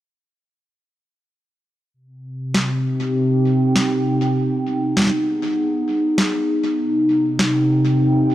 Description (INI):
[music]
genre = IDM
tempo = 99 BPM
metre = 4/4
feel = straight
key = C harmonic minor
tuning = A4 = 440 Hz
[part]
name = warbly tape-like pad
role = sustained chords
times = 2.3-8.3 s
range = C3 to G5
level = -17 LUFS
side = equal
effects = chorus, built-in reverb
[part]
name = electronic snare drum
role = drums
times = 2.5-7.5 s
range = none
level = -21 LUFS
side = equal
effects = tape echo
[sound]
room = moderate lush hall reverb, RT60 1.9 s, digital ambience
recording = dry, gritty hardware recording, cassette tape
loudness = -16 LUFS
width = side -14 dB against mid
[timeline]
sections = 1.9-8.3 A section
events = filter sweep on ambient pad 1.9-8.3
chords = 1.9 Cm; 4.4 Abm; 6.8 Cm